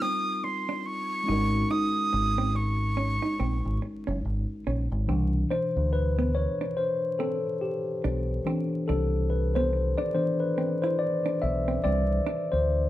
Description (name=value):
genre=R&B, neo-soul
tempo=71 BPM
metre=4/4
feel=swing 60% on 16ths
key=unclear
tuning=A4 = 440 Hz
part: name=breathy concert flute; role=melody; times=0.0-3.8 s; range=C6 to Eb6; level=-29 LUFS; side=right 2 dB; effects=none
part: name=hollow-body jazz guitar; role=second line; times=0.0-12.4 s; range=B3 to E4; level=-34 LUFS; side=right 4 dB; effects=none
part: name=mellow tine electric piano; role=accompaniment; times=0.0-12.9 s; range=B2 to E5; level=-28 LUFS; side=left 2 dB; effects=none
part: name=deep dub fingered electric bass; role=bass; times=1.3-12.9 s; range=Gb1 to D2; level=-27 LUFS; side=equal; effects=none
room=light reverb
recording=band playing live in one room, vinyl crackle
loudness=-25 LUFS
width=side -14 dB against mid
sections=0.0-5.1 A section; 5.1-12.9 B section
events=tine electric piano solo 5.1-12.9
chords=0.0 F9sus4; 1.3 Ab9sus4; 5.1 Cmaj9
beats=0.00 0.84 | 1.69 2.53 3.38 4.22 | 5.07 5.91 6.76 7.60 | 8.45 9.29 10.14 10.98 | 11.83 12.67